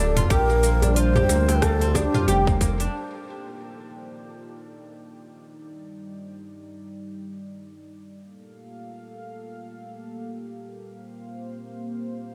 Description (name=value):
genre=organic downtempo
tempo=free time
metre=none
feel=none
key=C dorian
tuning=A4 = 440 Hz
part: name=breathy bass bansuri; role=melody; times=0.0-2.6 s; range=G4 to D5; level=-30 LUFS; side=equal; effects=tape echo
part: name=warm analog pad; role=sustained chords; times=0.0-12.3 s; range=G3 to F5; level=-37 LUFS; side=equal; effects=chorus, sidechain pumping
part: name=oud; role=arpeggios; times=0.0-2.9 s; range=Bb3 to G4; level=-29 LUFS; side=equal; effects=delay
part: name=smooth gliding synth bass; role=bass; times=0.0-2.9 s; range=D1 to D2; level=-24 LUFS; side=equal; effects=sidechain pumping
part: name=organic electronic drum kit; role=drums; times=0.2-2.9 s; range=cabasa, hi-hat, rim click, toms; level=-29 LUFS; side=equal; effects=overdrive, low-pass filter on hats, low-pass filter on perc, low-pass filter on toms, low-pass filter on snare, low-pass filter on room
part: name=electronic kick drum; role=drums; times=0.3-2.8 s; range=none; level=-26 LUFS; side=equal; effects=overdrive
part: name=djembe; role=percussion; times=0.5-2.1 s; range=none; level=-34 LUFS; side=equal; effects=none
room=light reverb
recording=none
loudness=-21 LUFS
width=mono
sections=0.0-2.9 A section; 2.9-12.3 B section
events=filter sweep on analog synth pad 2.9-12.3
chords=0.3 Bb69; 2.9 Cm11; 5.6 Ebmaj7; 8.2 Gm9; 10.9 Bbsus2